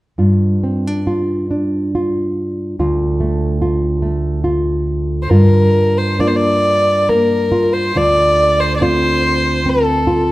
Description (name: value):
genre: celtic folk, Celtic slow air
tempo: 70 BPM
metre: 3/4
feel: uneven beats, rubato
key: G minor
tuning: A4 = 440 Hz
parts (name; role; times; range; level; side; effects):
- nylon-string guitar; accompaniment; 0.2-10.3 s; D2 to F4; -15 LUFS; right 1 dB; none
- dark fiddle; melody; 5.2-10.3 s; A4 to D5; -14 LUFS; left 1 dB; none
room: moderate recital hall reverb, RT60 1.6 s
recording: none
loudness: -13 LUFS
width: side -18 dB against mid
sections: 0.2-5.3 A section; 5.3-10.3 B section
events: none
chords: 0.2 G5; 2.8 Dm; 5.3 Gm7; 8.0 Dm7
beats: | 0.19 1.07 1.94 | 2.79 3.61 4.44 | 5.31 6.21 7.09 | 7.95 8.82 9.67